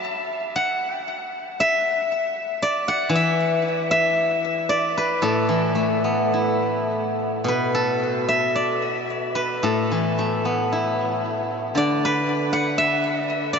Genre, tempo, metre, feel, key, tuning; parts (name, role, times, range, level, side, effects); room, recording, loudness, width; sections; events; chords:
chinese traditional, Chinese solo plucked strings; 53-60 BPM; 2/4; rubato; A zhi mode; A4 = 440 Hz
steel-string zither; solo; 0.0-13.6 s; A2 to D6; -20 LUFS; left 1 dB; ping-pong delay
wet huge ambient reverb, RT60 8.5 s; dreamy mix soaked in reverb, nothing above 7.6 kHz; -20 LUFS; side -6 dB against mid
0.0-7.5 A section; 7.5-13.6 B section